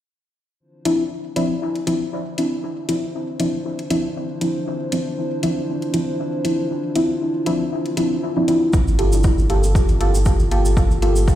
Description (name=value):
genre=dub techno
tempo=118 BPM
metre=4/4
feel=swing 55% on 16ths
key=D minor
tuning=A4 = 440 Hz
part: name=dark analog pad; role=sustained chords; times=0.6-11.4 s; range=Bb3 to C5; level=-27 LUFS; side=equal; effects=wide subtle chorus, sidechain pumping
part: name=deep mellow chord stab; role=stabs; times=0.9-11.2 s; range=F3 to A4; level=-21 LUFS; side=equal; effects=chorus, phaser, sidechain pumping, dub echo
part: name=electronic hi-hat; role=drums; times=0.9-11.1 s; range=none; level=-32 LUFS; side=left 1 dB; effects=overdrive
part: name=warm sub bass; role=bass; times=8.7-11.4 s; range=G1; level=-18 LUFS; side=equal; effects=tube saturation, sidechain pumping
part: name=electronic kick drum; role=drums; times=8.7-11.4 s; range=none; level=-18 LUFS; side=equal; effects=overdrive
part: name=tube shaker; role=percussion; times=8.7-11.4 s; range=none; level=-33 LUFS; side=right 2 dB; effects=none
room=light reverb, digital ambience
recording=played on a big sound system in a bare room, stone room reverb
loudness=-18 LUFS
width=side -12 dB against mid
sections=0.6-11.4 A section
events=filter sweep on synth stab 0.6-11.4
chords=0.6 Dm9; 8.7 Gm9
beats=| 0.60 1.11 1.62 2.12 | 2.63 3.14 3.65 4.16 | 4.67 5.17 5.68 6.19 | 6.70 7.21 7.72 8.23 | 8.73 9.24 9.75 10.26 | 10.77 11.28